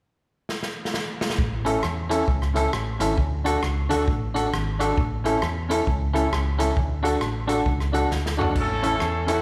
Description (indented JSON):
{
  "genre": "ska",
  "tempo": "134 BPM",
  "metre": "4/4",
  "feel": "swing 62% on 8ths",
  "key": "A major",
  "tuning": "A4 = 440 Hz",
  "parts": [
    { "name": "swinging big-band drum kit", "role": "drums", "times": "0.5-9.4 s", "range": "crash cymbal, hi-hat, kick drum, rim click, snare drum, toms", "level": "-30 LUFS", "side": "equal", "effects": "none" },
    { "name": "fingered electric bass", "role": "bass", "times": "1.4-9.4 s", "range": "G#1 to E2", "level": "-29 LUFS", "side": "equal", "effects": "none" },
    { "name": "clean electric guitar", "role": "accompaniment", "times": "1.6-9.4 s", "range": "C#4 to A4", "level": "-29 LUFS", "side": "equal", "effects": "warbly pitch drift, slapback echo" },
    { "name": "dark upright piano", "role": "stabs", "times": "1.6-9.4 s", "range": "C#4 to A4", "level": "-30 LUFS", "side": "equal", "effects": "none" },
    { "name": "clear horn section", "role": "melody", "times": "8.6-9.4 s", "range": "C#4 to A4", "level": "-28 LUFS", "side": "equal", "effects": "none" }
  ],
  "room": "moderate large studio reverb, RT60 0.8 s",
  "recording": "band playing live in one room",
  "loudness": "-24 LUFS",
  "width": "mono",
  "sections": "0.0-1.4 A section; 1.4-8.6 B section",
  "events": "drum fill 0.5-1.4, 8.1-8.6",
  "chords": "0.0 N.C.; 1.4 A; 3.2 D; 5.0 A; 6.8 D; 8.6 A"
}